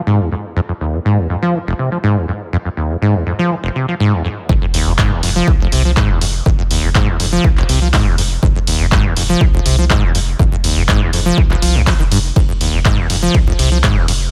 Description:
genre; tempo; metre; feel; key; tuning
acid house; 122 BPM; 4/4; straight; F minor; A4 = 440 Hz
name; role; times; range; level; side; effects
acid bass, saw; riff; 0.1-14.1 s; F1 to F3; -18 LUFS; equal; subtle chorus, sidechain pumping, tape echo
round analog bass; bass; 4.5-14.3 s; F1 to C2; -21 LUFS; equal; tube saturation, sidechain pumping
electronic kick drum; drums; 4.5-13.9 s; none; -17 LUFS; equal; none
punchy analog drum machine; drums; 4.7-14.2 s; handclaps, hi-hat, ride cymbal; -22 LUFS; equal; none
room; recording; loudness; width
little or no reverb; none; -15 LUFS; mono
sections
0.0-4.5 A section; 4.5-14.3 B section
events
drop 4.5-14.3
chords
0.0 Fm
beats
0.07 | 0.56 1.05 1.54 2.03 | 2.53 3.02 3.51 4.00 | 4.49 4.99 5.48 5.97 | 6.46 6.95 7.44 7.94 | 8.43 8.92 9.41 9.90 | 10.39 10.89 11.38 11.87 | 12.36 12.85 13.35 13.84

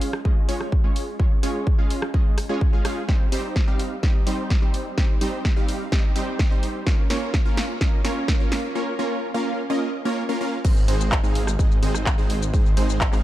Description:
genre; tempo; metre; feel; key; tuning
EDM, festival progressive house; 127 BPM; 4/4; straight; Ab major; A4 = 440 Hz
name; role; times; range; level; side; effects
supersaw stab; riff; 0.0-13.2 s; G3 to F5; -26 LUFS; right 1 dB; sidechain pumping, low-pass filter, dub echo
big-room dance drum kit; drums; 0.0-13.2 s; crash cymbal, handclaps, hi-hat, rim click, shaker, snare drum; -29 LUFS; equal; none
electronic kick drum; drums; 0.3-13.1 s; none; -20 LUFS; equal; none
detuned saw bass; bass; 10.6-13.2 s; Ab1; -24 LUFS; equal; sidechain pumping
room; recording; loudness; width
light reverb; dark, warm production; -20 LUFS; side -14 dB against mid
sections
0.0-10.6 A section; 10.6-13.2 B section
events
build-up 0.0-10.6; drum fill 3.1-8.8; break 8.8-10.6; drop 10.6-13.2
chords
0.0 Db; 3.1 Cm; 6.9 Bbm; 10.6 Ab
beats
0.25 0.72 | 1.20 1.67 2.14 2.61 | 3.09 3.56 4.03 4.50 | 4.98 5.45 5.92 6.39 | 6.87 7.34 7.81 8.28 | 8.76 9.23 9.70 10.17 | 10.64 11.12 11.59 12.06 | 12.54 13.01

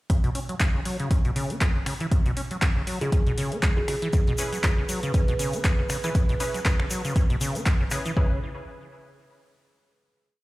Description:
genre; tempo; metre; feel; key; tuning
acid house; 119 BPM; 4/4; swing 56% on 16ths; C# minor; A4 = 440 Hz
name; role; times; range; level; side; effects
acid bass, saw; riff; 0.1-8.4 s; B2 to C#4; -30 LUFS; equal; analog chorus, cassette tape, sidechain pumping, tape echo
electronic kick drum; drums; 0.1-8.3 s; none; -22 LUFS; equal; overdrive, small room ambience
punchy analog drum machine; drums; 0.1-8.1 s; finger snaps, handclaps, hi-hat; -31 LUFS; equal; overdrive, small room ambience
kalimba; melody; 3.0-4.0 s; G#4; -34 LUFS; right 1 dB; tape echo
dark analog pad; sustained chords; 4.5-8.2 s; B4; -35 LUFS; right 4 dB; chorus, sidechain pumping
tube shaker; percussion; 4.1-8.1 s; none; -36 LUFS; left 2 dB; none
band-passed chord stab; stabs; 4.4-8.4 s; C#4 to B4; -36 LUFS; left 2 dB; analog chorus, tape echo
room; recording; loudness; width
light reverb, digital ambience; played on a big sound system in a bare room, large studio reverb; -22 LUFS; side -19 dB against mid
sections
0.1-8.2 groove; 8.2-10.2 final chord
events
none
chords
0.1 C#m7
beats
| 0.10 0.60 1.11 1.61 | 2.12 2.62 3.12 3.63 | 4.13 4.64 5.14 5.64 | 6.15 6.65 7.16 7.66 | 8.17

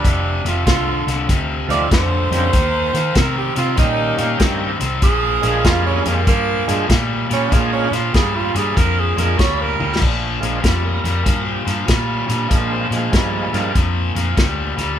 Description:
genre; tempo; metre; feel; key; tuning
electric blues shuffle; 96 BPM; 4/4; swing 66% on 8ths; Bb mixolydian; A4 = 439 Hz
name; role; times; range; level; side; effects
clear tenor saxophone; second line; 0.0-10.0 s; Bb3 to D5; -21 LUFS; right 5 dB; none
overdriven electric guitar; riff; 0.0-15.0 s; F2 to C4; -21 LUFS; left 3 dB; none
vintage muted fingered electric bass; bass; 0.0-15.0 s; F1 to Eb3; -22 LUFS; equal; none
warm soul drum kit; drums; 0.0-14.9 s; crash cymbal, hi-hat, kick drum, snare drum, toms; -18 LUFS; equal; none
bright tonewheel organ; accompaniment; 1.7-13.7 s; F3 to Bb4; -25 LUFS; right 3 dB; slow rotary speaker, overdrive, chorus vibrato
room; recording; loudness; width
light reverb; band playing live in one room; -15 LUFS; side -10 dB against mid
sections
0.0-10.0 A section; 10.0-15.0 A section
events
tenor saxophone solo 0.0-10.0; drum fill 9.7-10.0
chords
0.0 F7; 2.5 Eb7; 5.0 Bb7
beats
| 0.04 0.66 1.29 1.91 | 2.53 3.16 3.78 4.40 | 5.03 5.65 6.27 6.89 | 7.52 8.14 8.76 9.39 | 10.01 10.63 11.26 11.88 | 12.50 13.12 13.75 14.37

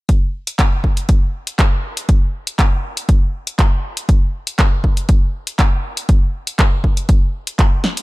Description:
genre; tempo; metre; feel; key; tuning
house; 120 BPM; 4/4; swing 53% on 16ths; none; none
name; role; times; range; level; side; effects
electronic kick drum; drums; 0.1-7.7 s; none; -13 LUFS; equal; none
punchy analog drum machine; drums; 0.1-8.0 s; handclaps, hi-hat, snare drum; -21 LUFS; equal; sidechain pumping on hats
room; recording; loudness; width
little or no reverb; none; -14 LUFS; side -20 dB against mid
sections
0.1-8.0 A section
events
drum fill 7.8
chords
none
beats
| 0.09 0.59 1.09 1.59 | 2.09 2.59 3.09 3.59 | 4.09 4.59 5.09 5.59 | 6.09 6.59 7.09 7.59

